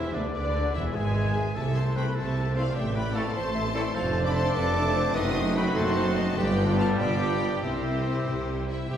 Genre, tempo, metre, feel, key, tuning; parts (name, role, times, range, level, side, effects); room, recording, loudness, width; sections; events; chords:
classical; 99 BPM (dotted quarters); 6/8; straight; A minor, C major from 4.0 s; A4 = 440 Hz
rich studio violin section; melody; 0.0-9.0 s; C5 to D#6; -37 LUFS; left 3 dB
dark clarinet; second line; 0.0-8.6 s; A4 to E5; -34 LUFS; equal
rich symphonic violin section; second line; 0.0-9.0 s; E4 to C6; -38 LUFS; left 3 dB
warm oboe; second line; 0.0-8.7 s; C4 to D#5; -35 LUFS; equal
rich studio viola section; accompaniment; 0.0-8.9 s; A3 to A4; -35 LUFS; right 1 dB
clear trombone section; sustained chords; 0.0-9.0 s; D3 to A3; -38 LUFS; right 1 dB
warm French horn section; sustained chords; 0.0-9.0 s; D3 to E4; -34 LUFS; left 2 dB
dark trumpet; stabs; 0.0-9.0 s; E4 to G#5; -35 LUFS; equal
clear tuba; bass; 0.0-9.0 s; E1 to D2; -35 LUFS; right 1 dB
rich symphonic cello section; bass; 0.0-9.0 s; D2 to C3; -31 LUFS; right 1 dB
warm chamber double bass section; bass; 0.0-9.0 s; E1 to D2; -30 LUFS; right 1 dB
large flute ensemble; second line; 8.7-9.0 s; E5 to G5; -48 LUFS; equal
wet scoring stage reverb, RT60 1.7 s; heard from further back in the room; -24 LUFS; side -9 dB against mid
0.0-8.9 A section
0.3 E7; 1.6 Am/C; 2.8 Am; 4.0 Dm7/F; 5.2 F#dim7; 6.4 G7; 7.6 C